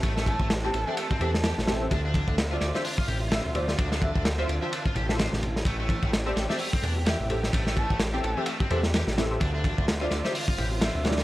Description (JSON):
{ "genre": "breakbeat, breaks", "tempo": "128 BPM", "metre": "4/4", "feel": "swing 58% on 16ths", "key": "A minor", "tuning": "A4 = 440 Hz", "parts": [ { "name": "dark studio string section", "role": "sustained chords", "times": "0.0-11.2 s", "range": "D3 to E5", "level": "-37 LUFS", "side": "right 2 dB", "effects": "sidechain pumping" }, { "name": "high-gain distorted guitar", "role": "riff", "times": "0.0-10.9 s", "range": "A3 to D5", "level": "-36 LUFS", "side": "equal", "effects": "distortion, analog delay" }, { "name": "dark detuned saw bass", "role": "bass", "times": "0.0-11.2 s", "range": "A1 to E2", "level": "-29 LUFS", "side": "equal", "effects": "tube saturation" }, { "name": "crunchy breakbeat drum kit", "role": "drums", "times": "0.0-11.2 s", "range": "hi-hat, kick drum, ride cymbal, snare drum", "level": "-27 LUFS", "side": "equal", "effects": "none" }, { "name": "breathy flute-like synth lead", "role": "melody", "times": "0.3-11.2 s", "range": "D5 to A5", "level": "-36 LUFS", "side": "equal", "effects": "chorus, tremolo, old record sound, analog delay" }, { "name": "bongos and congas", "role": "percussion", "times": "0.3-11.2 s", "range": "none", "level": "-38 LUFS", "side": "left 2 dB", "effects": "none" }, { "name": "filtered dub chord stab", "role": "stabs", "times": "0.6-11.2 s", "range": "C4 to E5", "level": "-33 LUFS", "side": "left 1 dB", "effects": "phaser, ensemble chorus, analog delay" } ], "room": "small room ambience", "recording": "dry, gritty hardware recording", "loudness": "-24 LUFS", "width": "side -16 dB against mid", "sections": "0.0-11.2 A section", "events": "none", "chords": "0.0 Am7; 1.9 Dm9; 5.7 Am7; 9.4 Dm9", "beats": "| 0.04 0.50 0.97 1.44 | 1.91 2.38 2.85 3.32 | 3.79 4.25 4.72 5.19 | 5.66 6.13 6.60 7.07 | 7.54 8.00 8.47 8.94 | 9.41 9.88 10.35 10.82" }